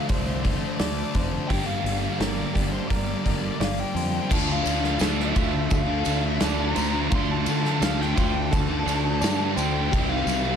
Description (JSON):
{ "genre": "rock, shoegaze and dream pop", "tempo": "85 BPM", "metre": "4/4", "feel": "straight", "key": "D minor", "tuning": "A4 = 437 Hz", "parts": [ { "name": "bluesy overdriven lead guitar", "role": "melody", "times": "0.0-10.6 s", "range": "C5 to C6", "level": "-31 LUFS", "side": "left 4 dB", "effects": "distortion, tape echo" }, { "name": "direct-recorded clean electric guitar", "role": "arpeggios", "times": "0.0-10.6 s", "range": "F4 to D5", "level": "-36 LUFS", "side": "right 9 dB", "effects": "wide subtle chorus, tape echo" }, { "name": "biting overdriven guitar", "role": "riff", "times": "0.0-10.6 s", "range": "G2 to F4", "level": "-31 LUFS", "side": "right 14 dB", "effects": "reverse reverb" }, { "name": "thick fuzz guitar", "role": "riff", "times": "0.0-10.6 s", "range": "G2 to D4", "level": "-30 LUFS", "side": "left 11 dB", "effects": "distortion, lush chorus" }, { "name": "tight distorted guitar", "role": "riff", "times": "0.0-10.6 s", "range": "G2 to F4", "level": "-33 LUFS", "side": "equal", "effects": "distortion" }, { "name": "fuzz fingered electric bass", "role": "bass", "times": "0.1-10.6 s", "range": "F1 to D3", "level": "-28 LUFS", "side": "equal", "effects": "overdrive" }, { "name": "loose indie drum kit", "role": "drums", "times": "0.1-10.4 s", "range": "crash cymbal, hi-hat, kick drum, ride cymbal, snare drum", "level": "-27 LUFS", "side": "equal", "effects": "none" }, { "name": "tambourine", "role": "percussion", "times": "4.7-10.4 s", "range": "none", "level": "-38 LUFS", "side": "left 10 dB", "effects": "none" } ], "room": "studio reverb", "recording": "none", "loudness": "-22 LUFS", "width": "side -8 dB against mid", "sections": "0.0-4.3 A section; 4.3-10.6 B section", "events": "none", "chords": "0.0 Dm7; 1.5 Gm7; 4.3 Dm; 9.9 C" }